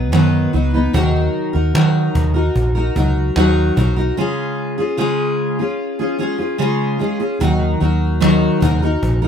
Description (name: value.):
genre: acoustic pop.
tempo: 74 BPM.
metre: 4/4.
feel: straight.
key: unclear.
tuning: A4 = 439 Hz.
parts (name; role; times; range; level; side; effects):
fingerpicked steel-string acoustic guitar; accompaniment; 0.0-9.3 s; C#3 to B4; -17 LUFS; equal; double-tracked left and right.
vintage muted fingered electric bass; bass; 0.0-9.3 s; A#1 to D#3; -17 LUFS; equal; none.
cajon; drums; 0.1-9.3 s; none; -26 LUFS; equal; none.
room: little or no reverb.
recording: rough home demo mix.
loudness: -15 LUFS.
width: side -8 dB against mid.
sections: 0.0-7.4 A section; 7.4-9.3 B section.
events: break 4.2-7.4.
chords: 0.0 B; 0.9 D#m; 4.2 C#; 7.4 D#m.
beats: 0.14 | 0.94 1.75 2.56 3.37 | 4.18 4.99 5.79 6.60 | 7.41 8.22 9.03.